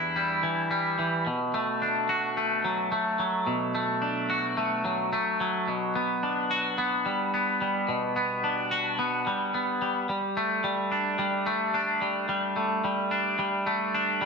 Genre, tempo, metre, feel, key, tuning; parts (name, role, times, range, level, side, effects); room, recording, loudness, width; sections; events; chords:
rock; 109 BPM; 4/4; straight; G major; A4 = 441 Hz
twangy electric guitar; solo; 0.0-14.3 s; E2 to F#4; -25 LUFS; equal; wide subtle chorus, slapback echo
wet large studio reverb, RT60 1.3 s; -25 LUFS; side -4 dB against mid
0.0-10.1 A section; 10.1-14.3 B section
0.0 Em7; 1.3 Bm7; 5.7 Gmaj7/B; 10.1 Gsus2